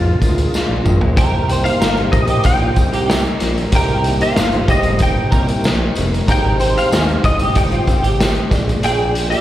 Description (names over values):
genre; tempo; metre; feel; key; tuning
indie pop, bedroom pop; 94 BPM; 4/4; straight; C minor; A4 = 440 Hz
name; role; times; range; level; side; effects
semi-hollow electric guitar; melody; 0.0-9.4 s; F4 to G5; -21 LUFS; left 1 dB; ensemble chorus, slapback echo, tape echo
electric guitar through a small old amp; accompaniment; 0.0-9.4 s; Bb2 to Ab4; -26 LUFS; left 2 dB; ensemble chorus, vibrato effect, slapback echo
reed electric piano; accompaniment; 0.0-9.4 s; Ab3 to D5; -24 LUFS; right 1 dB; fast tremolo, cassette tape
fat analog bass; bass; 0.0-9.4 s; F1 to F2; -19 LUFS; equal; none
raw garage drum kit; drums; 0.2-9.4 s; hi-hat, kick drum, snare drum, toms; -17 LUFS; equal; none
tambourine; percussion; 0.2-9.0 s; none; -35 LUFS; right 2 dB; none
clean electric guitar; second line; 1.2-9.4 s; F4 to C5; -23 LUFS; right 4 dB; ensemble chorus, slapback echo, tape echo
room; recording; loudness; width
light reverb; live gig heard through the venue's PA, recital hall reverb; -13 LUFS; side -13 dB against mid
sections
0.0-1.2 A section; 1.2-9.4 B section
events
drum fill 0.5-1.2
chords
0.0 Bb7; 1.2 Cm7; 6.3 Abmaj7; 8.5 Bb7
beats
0.54 | 1.18 1.82 2.45 3.09 | 3.73 4.37 5.01 5.64 | 6.28 6.92 7.56 8.20 | 8.83